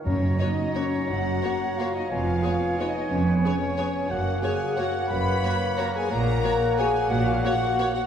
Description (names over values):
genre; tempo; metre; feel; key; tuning
classical, orchestral ballroom waltz; 179 BPM; 3/4; uneven beats, rubato; F# major; A4 = 442 Hz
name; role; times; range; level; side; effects
mellow bassoon; accompaniment; 0.0-7.9 s; F#3 to B3; -32 LUFS; right 2 dB; none
clear oboe; second line; 0.1-7.9 s; F#5 to A#5; -34 LUFS; right 1 dB; none
mellow clarinet; second line; 0.1-7.9 s; C#5; -36 LUFS; left 1 dB; none
mellow hollow concert flute; second line; 0.1-8.1 s; B4 to B5; -33 LUFS; equal; none
warm studio violin section; second line; 0.1-8.0 s; B4 to B5; -34 LUFS; left 1 dB; none
warm French horn section; sustained chords; 0.1-8.1 s; B3 to B4; -28 LUFS; left 4 dB; none
warm studio cello section; bass; 0.1-7.4 s; E#2 to A#2; -30 LUFS; right 2 dB; none
warm studio double bass section; bass; 0.1-7.4 s; E#1 to A#1; -29 LUFS; right 2 dB; none
timpani; percussion; 0.1-0.5 s; F#2; -32 LUFS; left 1 dB; none
warm studio violin section; melody; 0.4-7.9 s; C#5; -37 LUFS; left 2 dB; none
rich studio viola section; accompaniment; 0.4-7.9 s; A#3 to G#4; -36 LUFS; right 1 dB; none
room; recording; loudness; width
wet concert hall reverb, RT60 2.0 s; heard from further back in the room; -22 LUFS; side -8 dB against mid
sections
0.1-8.1 A section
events
none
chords
0.1 F#; 2.1 C#7/E#; 4.1 F#; 6.1 F#/A#